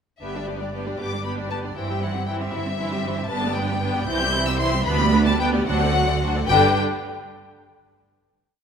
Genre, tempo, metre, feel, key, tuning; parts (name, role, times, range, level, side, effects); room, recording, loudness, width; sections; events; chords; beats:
quick classical-period movement for string orchestra; 76 BPM (dotted quarters); 6/8; straight; G major; A4 = 440 Hz
rich chamber violin section; melody; 0.2-6.8 s; D5 to G6; -25 LUFS; left 6 dB
rich chamber violin section; second line; 0.2-6.8 s; D4 to E5; -30 LUFS; left 2 dB
rich symphonic viola section; accompaniment; 0.2-6.8 s; D3 to G4; -26 LUFS; right 2 dB
rich chamber double bass section; bass; 0.2-6.8 s; G1 to D2; -28 LUFS; right 3 dB
rich symphonic cello section; bass; 0.2-6.8 s; C2 to G2; -27 LUFS; right 4 dB
wet scoring stage reverb, RT60 1.8 s; minimal, uncompressed stereo recording; -20 LUFS; side -7 dB against mid
0.2-6.5 A section; 6.5-8.1 final chord
0.2 G; 1.8 C/G; 3.3 G; 4.1 C; 4.9 G/D; 5.7 D7; 6.5 G5
| 0.22 0.99 | 1.76 2.53 | 3.29 4.08 | 4.87 5.67 | 6.49